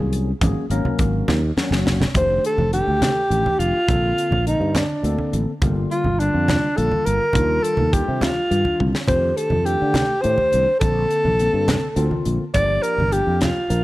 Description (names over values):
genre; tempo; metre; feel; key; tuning
electric jazz fusion; 69 BPM (dotted quarters); 6/8; straight; F mixolydian; A4 = 441 Hz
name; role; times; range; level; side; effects
tine electric piano; accompaniment; 0.0-13.8 s; D3 to Bb4; -26 LUFS; left 2 dB; phaser
sustaining fretless electric bass; bass; 0.0-13.8 s; F1 to D3; -22 LUFS; equal; lush chorus
tight funk drum kit; drums; 0.1-13.8 s; hi-hat, kick drum, snare drum, toms; -24 LUFS; equal; none
congas; percussion; 0.4-13.8 s; none; -26 LUFS; right 2 dB; none
breathy alto saxophone; melody; 2.2-13.8 s; D4 to D5; -20 LUFS; equal; none
room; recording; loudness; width
light reverb, small room ambience; none; -17 LUFS; side -17 dB against mid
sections
0.0-2.1 A section; 2.1-13.8 B section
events
drum fill 1.3-2.1, 8.8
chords
0.0 Ab9sus4; 2.1 F13; 3.9 Bbmaj9; 5.6 Gm7; 7.4 Ebmaj9; 9.1 F13; 10.8 Bbmaj9; 12.5 Gm7